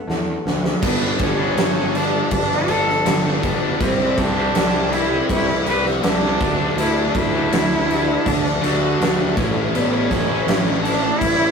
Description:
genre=quiet-loud alternative rock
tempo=81 BPM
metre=4/4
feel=straight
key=unclear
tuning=A4 = 440 Hz
part: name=rich cello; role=melody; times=0.0-11.5 s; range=A3 to B4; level=-22 LUFS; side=right 2 dB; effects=none
part: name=electric guitar through a small old amp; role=arpeggios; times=0.0-0.8 s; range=G3 to A4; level=-29 LUFS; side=left 4 dB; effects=none
part: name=fuzz picked electric bass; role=bass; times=0.1-11.5 s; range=G1 to E2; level=-24 LUFS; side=equal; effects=overdrive
part: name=big rock drum kit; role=drums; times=0.1-11.5 s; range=crash cymbal, kick drum, snare drum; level=-20 LUFS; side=left 1 dB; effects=none
part: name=high-gain distorted guitar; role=riff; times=0.8-11.2 s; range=G2 to E4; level=-24 LUFS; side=equal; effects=distortion
room=moderate small room reverb, RT60 0.6 s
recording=rough rehearsal-room recording, tube saturation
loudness=-16 LUFS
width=side -6 dB against mid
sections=0.8-11.5 A section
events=drum fill 0.1-0.8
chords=0.0 Gadd9; 3.8 C; 6.4 Dadd9; 9.4 A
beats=0.08 | 0.83 1.58 2.32 3.06 | 3.81 4.55 5.29 6.03 | 6.77 7.51 8.25 8.99 | 9.73 10.47 11.21

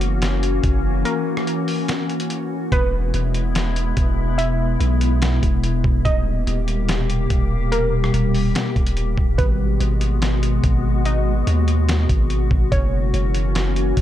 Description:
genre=hip hop, atmospheric cloud-rap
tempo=144 BPM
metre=4/4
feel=half-time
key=unclear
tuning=A4 = 440 Hz
part: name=warbly dusty pluck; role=melody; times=0.0-14.0 s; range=A#4 to E5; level=-28 LUFS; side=right 2 dB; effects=chorus, low-pass filter, digital delay
part: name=glassy FM pad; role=sustained chords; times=0.0-14.0 s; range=B2 to G4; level=-23 LUFS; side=left 1 dB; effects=ensemble chorus, built-in reverb, sidechain pumping
part: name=long sustained 808-style bass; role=bass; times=0.0-14.0 s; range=D#1 to D#2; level=-20 LUFS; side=equal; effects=none
part: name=dusty soul sampler-style drum kit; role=drums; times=0.0-14.0 s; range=hi-hat, kick drum, rim click, snare drum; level=-22 LUFS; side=equal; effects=none
room=digital ambience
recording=dark, warm production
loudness=-17 LUFS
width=side -12 dB against mid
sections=0.0-2.7 A section; 2.7-14.0 A section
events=break 1.1-2.7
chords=0.0 F#7; 2.7 E; 6.1 D#; 9.4 G#m7; 12.7 F#7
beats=0.22 0.64 | 1.05 1.47 1.89 2.30 | 2.72 3.14 3.55 3.97 | 4.39 4.80 5.22 5.64 | 6.05 6.47 6.89 7.30 | 7.72 8.14 8.55 8.97 | 9.39 9.80 10.22 10.64 | 11.05 11.47 11.89 12.30 | 12.72 13.14 13.55 13.97

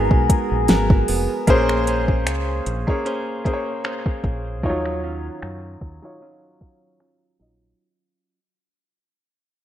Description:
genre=contemporary R&B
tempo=76 BPM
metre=4/4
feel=swing 54% on 16ths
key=Bb minor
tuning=A4 = 439 Hz
part: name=breathy alto saxophone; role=melody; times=0.0-0.7 s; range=Bb4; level=-36 LUFS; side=right 1 dB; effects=ping-pong delay
part: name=clear concert grand piano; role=accompaniment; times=0.0-7.8 s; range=F3 to Eb5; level=-24 LUFS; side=left 1 dB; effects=none
part: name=deep dark ambient pad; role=sustained chords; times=0.0-1.4 s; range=Ab4 to Bb5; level=-26 LUFS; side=equal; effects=chorus, built-in reverb, sidechain pumping
part: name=direct-recorded clean electric guitar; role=arpeggios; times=0.0-8.4 s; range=Eb3 to C5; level=-30 LUFS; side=right 3 dB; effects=ping-pong delay
part: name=deep dub fingered electric bass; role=bass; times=0.0-7.7 s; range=F1 to Gb2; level=-24 LUFS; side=equal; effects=none
part: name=smooth R&B drum kit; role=drums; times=0.1-7.2 s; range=finger snaps, hi-hat, kick drum, snare drum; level=-20 LUFS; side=equal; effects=overdrive
room=light reverb, digital ambience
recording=rough home demo mix, low-pass filter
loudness=-18 LUFS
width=side -11 dB against mid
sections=0.0-1.5 A section; 1.5-7.8 B section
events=fade-out 1.5-7.8; filter sweep 1.5-7.8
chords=0.0 Abm9; 1.5 Bbm9; 4.6 Ebm9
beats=0.69 | 1.48 2.27 3.06 3.85 | 4.63 5.42 6.21 7.00

